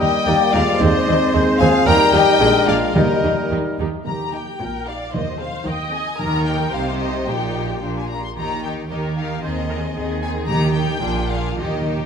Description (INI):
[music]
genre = quick classical-period movement for symphony orchestra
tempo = 112 BPM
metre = 2/4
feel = rubato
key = Eb major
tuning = A4 = 442 Hz
[part]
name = warm studio violin section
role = melody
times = 0.0-12.1 s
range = Eb5 to C6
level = -25 LUFS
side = left 5 dB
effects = none
[part]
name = mellow large flute ensemble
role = second line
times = 0.0-3.5 s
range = Eb5 to Bb5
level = -22 LUFS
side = left 4 dB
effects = none
[part]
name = rich chamber violin section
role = second line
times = 0.0-12.1 s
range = C4 to G5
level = -25 LUFS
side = left 4 dB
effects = none
[part]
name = warm clarinet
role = second line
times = 0.0-3.5 s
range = Eb4 to Bb4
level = -24 LUFS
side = left 1 dB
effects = none
[part]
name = warm oboe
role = second line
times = 0.0-3.8 s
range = Bb4 to Eb5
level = -25 LUFS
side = right 1 dB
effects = none
[part]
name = warm bassoon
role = accompaniment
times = 0.0-3.8 s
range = F3 to Bb3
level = -23 LUFS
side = right 2 dB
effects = none
[part]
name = warm studio viola section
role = accompaniment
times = 0.0-12.1 s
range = C4 to Eb5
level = -28 LUFS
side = equal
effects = none
[part]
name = mellow French horn section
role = sustained chords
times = 0.0-3.8 s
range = G3 to Eb4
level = -22 LUFS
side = left 3 dB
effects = none
[part]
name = warm chamber cello section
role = bass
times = 0.0-12.1 s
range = Eb2 to Eb3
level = -25 LUFS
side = right 3 dB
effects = none
[part]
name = warm studio double bass section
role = bass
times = 0.0-12.1 s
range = Bb1 to Eb2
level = -26 LUFS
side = right 3 dB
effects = none
[part]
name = timpani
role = percussion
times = 3.0-6.7, 10.5-12.0 s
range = Eb3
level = -27 LUFS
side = equal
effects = none
[sound]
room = wet scoring stage reverb, RT60 1.6 s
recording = none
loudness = -16 LUFS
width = side -7 dB against mid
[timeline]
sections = 0.0-4.1 A section; 4.1-12.1 A section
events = timpani fill 11.6-12.1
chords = 0.0 Eb; 0.8 Ab/Eb; 1.9 Eb; 2.4 Bb7; 2.9 Eb; 5.1 Ab/Eb; 6.2 Eb; 6.7 Cm; 7.3 Eb/Bb; 8.4 Eb; 9.4 Ab/Eb; 10.5 Eb; 11.0 Bb7